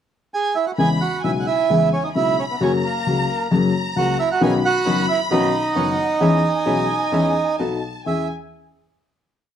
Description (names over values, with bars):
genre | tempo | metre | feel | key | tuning
tango | 132 BPM | 4/4 | rubato | E major | A4 = 438 Hz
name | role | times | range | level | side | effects
bandoneon | melody | 0.3-8.3 s | A#3 to G#5 | -20 LUFS | right 5 dB | none
rich studio violin section | second line | 0.8-8.3 s | F#5 to B5 | -27 LUFS | left 1 dB | none
warm upright piano | accompaniment | 0.8-8.3 s | F#1 to A4 | -20 LUFS | left 3 dB | none
bandoneon | stabs | 4.4-8.2 s | G#3 to E4 | -29 LUFS | right 3 dB | none
room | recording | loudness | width
moderate studio reverb, RT60 1.0 s | dark, warm production | -17 LUFS | side -9 dB against mid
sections
0.0-0.8 pickup bar; 0.8-8.1 A section; 8.1-9.6 final chord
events
none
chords
0.0 E; 0.8 E6; 2.6 F#; 4.4 Badd9; 6.2 E6; 7.6 B7; 8.1 E6